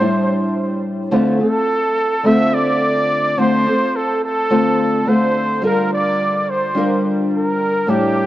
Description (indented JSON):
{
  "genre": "indie pop",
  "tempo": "107 BPM",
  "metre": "4/4",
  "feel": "straight",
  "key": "D minor",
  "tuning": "A4 = 440 Hz",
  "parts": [
    { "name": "breathy trumpet", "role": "melody", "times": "0.0-8.3 s", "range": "G4 to E5", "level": "-18 LUFS", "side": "right 1 dB", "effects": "analog chorus, tape echo" },
    { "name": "nylon-string guitar", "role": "accompaniment", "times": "0.0-8.3 s", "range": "A2 to Bb4", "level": "-17 LUFS", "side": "equal", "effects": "analog chorus, warbly pitch drift" }
  ],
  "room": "moderate plate reverb, RT60 3.0 s",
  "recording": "worn, warbling old tape, cassette tape, warbly pitch drift",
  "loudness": "-15 LUFS",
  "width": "side -14 dB against mid",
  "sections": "0.0-8.3 A section",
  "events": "none",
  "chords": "0.0 A7sus4; 1.1 Dm7; 5.6 Gm7"
}